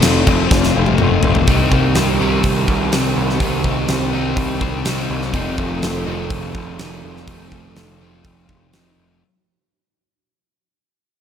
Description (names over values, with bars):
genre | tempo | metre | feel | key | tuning
rock, shoegaze and dream pop | 124 BPM | 4/4 | straight | unclear | A4 = 439 Hz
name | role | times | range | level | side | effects
fingerpicked twelve-string acoustic guitar | arpeggios | 0.0-9.2 s | Eb3 to G4 | -27 LUFS | left 9 dB | wide subtle chorus, slapback echo
overdriven electric guitar | riff | 0.0-9.2 s | F2 to Eb4 | -24 LUFS | equal | none
overdriven semi-hollow guitar | riff | 0.0-9.2 s | F2 to G4 | -24 LUFS | right 9 dB | reverse reverb
thick fuzz guitar | riff | 0.0-9.2 s | F2 to C4 | -21 LUFS | left 8 dB | distortion, analog chorus
growling picked electric bass | bass | 0.0-9.2 s | F1 to C2 | -22 LUFS | equal | overdrive
huge arena drum kit | drums | 0.0-8.8 s | crash cymbal, hi-hat, kick drum, snare drum, toms | -20 LUFS | equal | none
room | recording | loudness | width
small room ambience | none | -15 LUFS | side -8 dB against mid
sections
0.0-1.5 A section; 1.5-9.2 B section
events
drum fill 0.5-1.5; fade-out 1.5-9.2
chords
0.0 F7; 1.5 Cm7; 5.3 F7